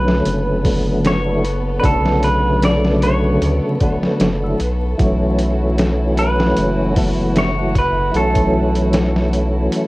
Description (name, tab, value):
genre	trip hop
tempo	76 BPM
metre	4/4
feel	swing 54% on 16ths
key	B minor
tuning	A4 = 438 Hz
part	semi-hollow electric guitar	melody	0.0-9.9 s	A4 to D5	-22 LUFS	right 1 dB	tape echo
part	percussive tonewheel organ	accompaniment	0.0-9.9 s	C#3 to F#4	-19 LUFS	equal	overdrive, chorus vibrato, slow rotary speaker, tremolo, vintage 12-bit sampler grit
part	warm studio violin section	sustained chords	0.0-9.9 s	B3 to B4	-26 LUFS	equal	none
part	round analog bass	bass	0.0-9.7 s	F#1 to D2	-19 LUFS	equal	tube saturation
part	trip hop sampler-style drum kit	drums	0.1-9.9 s	hi-hat, kick drum, snare drum	-20 LUFS	equal	none
room	light reverb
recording	worn, warbling old tape, cassette tape, vinyl crackle, warbly pitch drift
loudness	-14 LUFS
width	side -20 dB against mid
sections	0.0-9.9 A section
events	none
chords	0.0 Bm9; 5.0 F#m7